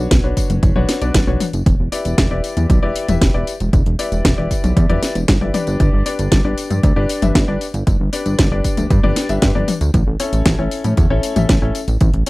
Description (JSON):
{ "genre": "italo disco", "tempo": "116 BPM", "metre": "4/4", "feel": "straight", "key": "unclear", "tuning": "A4 = 440 Hz", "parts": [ { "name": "warm grand piano", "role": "stabs", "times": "0.0-12.3 s", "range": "C#4 to E5", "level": "-23 LUFS", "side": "left 3 dB", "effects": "tape echo" }, { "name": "chorused synth bass", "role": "bass", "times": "0.0-12.2 s", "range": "E1 to A2", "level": "-18 LUFS", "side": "equal", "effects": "none" }, { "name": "electronic kick drum", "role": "drums", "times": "0.1-12.1 s", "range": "none", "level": "-16 LUFS", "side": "equal", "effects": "none" }, { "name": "house drum kit", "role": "drums", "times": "0.1-12.3 s", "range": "hi-hat, snare drum, tambourine, toms", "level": "-20 LUFS", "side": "left 1 dB", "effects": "none" } ], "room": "little or no reverb", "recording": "dry, close 1970s-style studio recording", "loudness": "-14 LUFS", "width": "side -21 dB against mid", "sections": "0.0-12.3 A section", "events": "none", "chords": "0.0 Bmadd9; 1.7 Em7; 5.8 G; 9.9 A" }